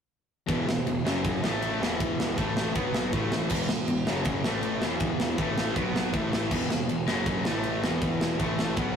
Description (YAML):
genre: punk rock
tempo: 159 BPM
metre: 4/4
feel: straight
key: unclear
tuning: A4 = 440 Hz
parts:
  - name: distorted electric guitar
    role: riff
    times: 0.5-9.0 s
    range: E2 to B3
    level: -30 LUFS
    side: left 5 dB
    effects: distortion
  - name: distorted electric guitar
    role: riff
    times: 0.5-9.0 s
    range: E2 to B3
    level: -33 LUFS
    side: right 7 dB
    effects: overdrive
  - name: fuzz picked electric bass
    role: bass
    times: 0.5-9.0 s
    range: E1 to B1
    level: -34 LUFS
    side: right 1 dB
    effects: overdrive
  - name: tight metal drum kit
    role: drums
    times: 0.5-8.9 s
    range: crash cymbal, kick drum, ride cymbal, snare drum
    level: -29 LUFS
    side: right 1 dB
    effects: none
room: light reverb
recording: rough rehearsal-room recording, warm saturation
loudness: -25 LUFS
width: side -7 dB against mid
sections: 0.5-9.0 A section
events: none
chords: 0.5 E5; 1.1 F#5; 1.4 A5; 1.8 E5; 2.4 A5; 2.7 B5; 3.1 A5; 3.5 E5; 4.1 F#5; 4.4 A5; 4.8 E5; 5.4 A5; 5.8 B5; 6.1 A5; 6.5 E5; 7.1 F#5; 7.5 A5; 7.8 E5; 8.4 A5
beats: | 0.49 0.86 1.24 1.62 | 2.00 2.37 2.75 3.12 | 3.50 3.88 4.25 4.63 | 5.01 5.38 5.76 6.14 | 6.51 6.89 7.27 7.64 | 8.02 8.39 8.77